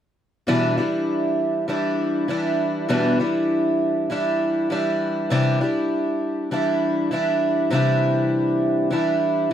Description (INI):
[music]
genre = pop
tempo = 100 BPM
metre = 4/4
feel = straight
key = E minor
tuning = A4 = 440 Hz
[part]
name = fingerpicked twelve-string acoustic guitar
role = accompaniment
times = 0.5-9.5 s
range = E2 to E4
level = -19 LUFS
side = equal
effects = none
[sound]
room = moderate small room reverb, RT60 0.5 s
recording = none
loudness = -19 LUFS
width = side -10 dB against mid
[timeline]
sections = 0.5-9.5 A section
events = none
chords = 0.5 Em7; 5.3 Cadd9